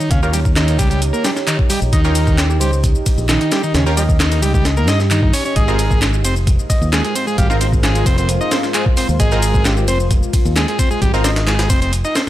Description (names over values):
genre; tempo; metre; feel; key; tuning
breakbeat, breaks; 132 BPM; 4/4; straight; unclear; A4 = 441 Hz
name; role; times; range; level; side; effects
deep dark ambient pad; sustained chords; 0.0-12.3 s; Ab3 to Eb5; -25 LUFS; right 1 dB; chorus, built-in reverb, sidechain pumping
overdriven combo organ; riff; 0.0-12.2 s; Db3 to Eb4; -20 LUFS; equal; vintage 12-bit sampler grit, tape echo
garage drum kit; drums; 0.0-12.2 s; handclaps, ride cymbal, shaker; -25 LUFS; left 1 dB; none
soft struck synth lead; melody; 0.1-11.6 s; G4 to F5; -28 LUFS; left 1 dB; chorus, phaser, AM radio sound, tape echo
modern bright fingered electric bass; bass; 0.1-12.0 s; F1 to G2; -17 LUFS; equal; none
breakbeat sampler-style drum kit; drums; 0.1-12.3 s; hi-hat, kick drum, snare drum; -17 LUFS; equal; none
orchestra-hit-like synth stab; stabs; 0.2-11.3 s; C4 to Bb4; -26 LUFS; right 1 dB; built-in reverb, tape echo
room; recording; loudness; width
little or no reverb; dry, gritty hardware recording; -13 LUFS; side -14 dB against mid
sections
0.0-12.3 A section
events
break 11.9-12.3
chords
0.0 Eb7; 5.6 Ab69